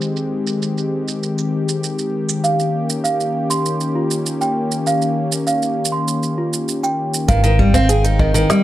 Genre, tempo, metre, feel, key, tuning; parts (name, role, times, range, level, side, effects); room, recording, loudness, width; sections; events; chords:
folktronica; 99 BPM; 4/4; straight; A4 = 440 Hz
warm analog pad; sustained chords; 0.0-8.6 s; Eb3 to G5; -20 LUFS; left 2 dB; chorus
organic electronic drum kit; drums; 0.0-8.6 s; hi-hat, shaker, snare drum; -24 LUFS; right 4 dB; overdrive, low-pass filter on hats, small room ambience, low-pass filter on perc, low-pass filter on snare
worn celesta; second line; 2.4-8.6 s; F4 to C6; -21 LUFS; right 3 dB; digital delay
fingerpicked steel-string acoustic guitar; arpeggios; 7.3-8.6 s; Eb3 to Ab4; -16 LUFS; equal; digital delay
upright bass; bass; 7.3-8.4 s; Ab1; -16 LUFS; equal
kick drum; drums; 7.3-8.3 s; -18 LUFS; equal; small room ambience
moderate studio ambience, RT60 0.5 s; -16 LUFS; side -14 dB against mid
0.0-7.3 A section; 7.3-8.6 B section
0.0 Abmaj7; 2.4 Eb7; 7.3 Abmaj7